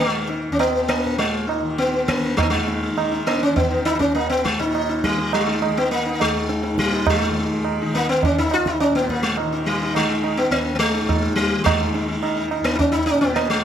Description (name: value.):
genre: indian classical, Hindustani.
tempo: 103 BPM.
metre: 4/4.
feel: straight.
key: unclear.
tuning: A4 = 440 Hz.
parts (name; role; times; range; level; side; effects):
sitar; melody; 0.0-13.6 s; G3 to F4; -20 LUFS; left 1 dB; none.
tanpura; drone; 0.0-13.6 s; Eb2 to Eb3; -28 LUFS; left 2 dB; none.
tabla; percussion; 0.0-13.6 s; none; -24 LUFS; right 5 dB; none.
room: moderate recital hall reverb, RT60 1.5 s.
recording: none.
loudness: -18 LUFS.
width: side -9 dB against mid.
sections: 0.0-2.4 A section; 2.4-13.6 B section.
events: speeding up 0.0-13.6.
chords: none.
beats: | 0.00 0.60 1.20 1.79 | 2.38 2.98 3.56 4.15 | 4.74 5.33 5.91 6.49 | 7.07 7.65 8.23 8.80 | 9.38 9.95 10.52 11.09 | 11.66 12.23 12.79 13.36.